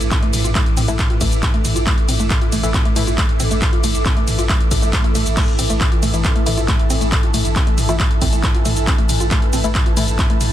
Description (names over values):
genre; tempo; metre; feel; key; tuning
driving peak-time techno; 137 BPM; 4/4; straight; unclear; A4 = 440 Hz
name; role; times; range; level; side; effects
saturated sub bass; bass; 0.0-10.5 s; A1; -22 LUFS; equal; tube saturation, sidechain pumping, low-pass filter
overtone-sweeping drone; drone; 0.0-10.5 s; A2 to E3; -28 LUFS; left 1 dB; chorus, built-in reverb, phaser, sidechain pumping
punchy analog drum machine; drums; 0.0-10.5 s; crash cymbal, handclaps, hi-hat, ride cymbal, shaker, toms; -20 LUFS; equal; none
ethereal airy pad; texture; 0.0-10.5 s; E4 to D6; -26 LUFS; right 1 dB; ensemble chorus, built-in reverb, sidechain pumping
woody wave-folded pluck; riff; 0.1-10.3 s; A3 to A4; -27 LUFS; equal; chorus, tube saturation, sidechain pumping, dub echo
electronic kick drum; drums; 0.1-10.3 s; none; -18 LUFS; equal; none
filtered dub chord stab; stabs; 0.9-3.0, 6.1-10.0 s; E3 to E4; -29 LUFS; left 4 dB; none
swell; sound effects; 4.6-5.4 s; none; -32 LUFS; right 2 dB; none
room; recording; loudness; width
little or no reverb; dense, heavily limited modern master; -14 LUFS; side -12 dB against mid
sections
0.0-10.5 A section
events
swell 4.6-5.4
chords
0.0 A5